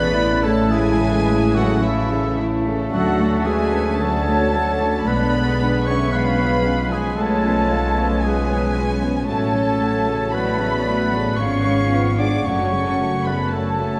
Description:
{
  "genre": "classical",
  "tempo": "56 BPM",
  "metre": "3/4",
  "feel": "rubato",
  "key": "F# minor",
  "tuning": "A4 = 441 Hz",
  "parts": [
    { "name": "warm chamber violin section", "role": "melody", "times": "0.0-14.0 s", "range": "E5 to D6", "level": "-30 LUFS", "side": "equal", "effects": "none" },
    { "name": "mellow cor anglais", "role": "second line", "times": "0.0-14.0 s", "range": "E4 to D5", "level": "-30 LUFS", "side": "equal", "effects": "none" },
    { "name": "mellow small flute group", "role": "second line", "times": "0.0-14.0 s", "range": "A4 to F#5", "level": "-30 LUFS", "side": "equal", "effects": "none" },
    { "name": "warm chamber violin section", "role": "second line", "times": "0.0-14.0 s", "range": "A3 to A4", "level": "-33 LUFS", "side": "equal", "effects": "none" },
    { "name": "warm clarinet", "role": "second line", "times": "0.0-14.0 s", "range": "E4 to D5", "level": "-30 LUFS", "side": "equal", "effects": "none" },
    { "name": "dark chamber viola section", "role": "accompaniment", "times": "0.0-14.0 s", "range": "C#3 to B3", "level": "-29 LUFS", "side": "equal", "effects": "none" },
    { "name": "clear trombone section", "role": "sustained chords", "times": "0.0-14.0 s", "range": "F#2 to B3", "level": "-32 LUFS", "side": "equal", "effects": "none" },
    { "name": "warm French horn section", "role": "sustained chords", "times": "0.0-14.0 s", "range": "B3 to G#4", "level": "-30 LUFS", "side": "equal", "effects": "none" },
    { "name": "concert harp", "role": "arpeggios", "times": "0.0-14.0 s", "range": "F#2 to C#6", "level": "-32 LUFS", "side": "equal", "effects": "none" },
    { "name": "warm chamber cello section", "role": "bass", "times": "0.0-14.0 s", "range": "E3 to D4", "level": "-27 LUFS", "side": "equal", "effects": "none" },
    { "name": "warm chamber double bass section", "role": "bass", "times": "0.0-14.0 s", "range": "F#1 to D2", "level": "-26 LUFS", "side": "equal", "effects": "none" },
    { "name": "timpani", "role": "percussion", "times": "12.5-14.0 s", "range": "none", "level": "barely audible", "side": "none", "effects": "none" }
  ],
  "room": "wet concert hall reverb, RT60 2.5 s",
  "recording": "dark, warm production",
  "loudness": "-19 LUFS",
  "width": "mono",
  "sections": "0.0-14.0 A section",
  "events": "none",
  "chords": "0.0 A; 2.9 Dmaj7; 5.1 G#dim/B; 6.1 C#7/B; 9.3 F#m/A; 11.4 C#7/G#; 12.4 F#m"
}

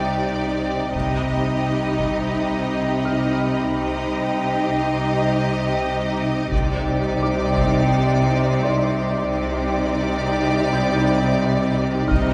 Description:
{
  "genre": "cinematic, suspense film score",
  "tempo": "86 BPM",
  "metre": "4/4",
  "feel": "straight",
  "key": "C minor",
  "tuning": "A4 = 440 Hz",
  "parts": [
    { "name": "clear chamber violin section", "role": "melody", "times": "0.0-12.3 s", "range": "D5 to Eb5", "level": "-31 LUFS", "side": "equal", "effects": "none" },
    { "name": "rich chamber violin section", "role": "second line", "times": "0.0-12.3 s", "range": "G4", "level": "-31 LUFS", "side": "equal", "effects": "none" },
    { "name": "clear symphonic viola section", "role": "accompaniment", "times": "0.0-12.3 s", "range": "Eb4", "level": "-29 LUFS", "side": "equal", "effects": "none" },
    { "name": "glass harmonica", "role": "sustained chords", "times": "0.0-12.3 s", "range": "Eb4 to G5", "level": "-30 LUFS", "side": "equal", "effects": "none" },
    { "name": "clear chamber cello section", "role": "bass", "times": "0.0-12.3 s", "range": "C3", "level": "-27 LUFS", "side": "equal", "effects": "none" },
    { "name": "rich chamber double bass section", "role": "bass", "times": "0.0-12.3 s", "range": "C2", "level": "-27 LUFS", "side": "equal", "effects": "none" },
    { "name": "felt-muted upright piano", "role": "texture", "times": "0.0-12.3 s", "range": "D5 to G6", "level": "-35 LUFS", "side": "equal", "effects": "none" },
    { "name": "taiko ensemble", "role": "drums", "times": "0.9-2.3, 6.5-7.9, 12.1-12.3 s", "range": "none", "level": "-29 LUFS", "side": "equal", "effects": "none" },
    { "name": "rich chamber violin section", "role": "texture", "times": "0.9-12.3 s", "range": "G5 to D6", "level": "-37 LUFS", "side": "equal", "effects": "none" }
  ],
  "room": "wet concert hall reverb, RT60 2.3 s",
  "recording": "heard from further back in the room",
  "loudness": "-21 LUFS",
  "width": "mono",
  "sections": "0.0-12.3 A section",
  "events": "none",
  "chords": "0.0 Cmadd9; 0.9 Eb/C; 6.5 Cmadd9"
}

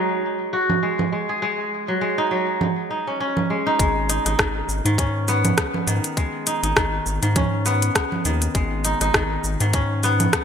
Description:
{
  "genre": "organic downtempo",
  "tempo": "101 BPM",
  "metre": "4/4",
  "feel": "swing 56% on 16ths",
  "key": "G# minor",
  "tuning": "A4 = 440 Hz",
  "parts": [
    { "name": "kora", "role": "arpeggios", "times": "0.0-10.4 s", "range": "D#3 to G#4", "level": "-22 LUFS", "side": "equal", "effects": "ping-pong delay" },
    { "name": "organic electronic drum kit", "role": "drums", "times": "0.7-10.4 s", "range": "cabasa, congas, hi-hat, rim click", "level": "-23 LUFS", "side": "right 2 dB", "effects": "none" },
    { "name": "round analog bass", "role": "bass", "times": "3.8-10.3 s", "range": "G#1 to G#2", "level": "-23 LUFS", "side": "left 1 dB", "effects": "sidechain pumping" },
    { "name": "electronic kick drum", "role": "drums", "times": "3.8-10.4 s", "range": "none", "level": "-23 LUFS", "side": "left 1 dB", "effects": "none" }
  ],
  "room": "moderate lush hall reverb, RT60 2.1 s",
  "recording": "bright 1980s-style digital production, low-pass filter",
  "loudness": "-19 LUFS",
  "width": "side -7 dB against mid",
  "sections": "0.0-3.8 A section; 3.8-10.4 B section",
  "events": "none",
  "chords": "0.0 G#5; 3.8 G#m"
}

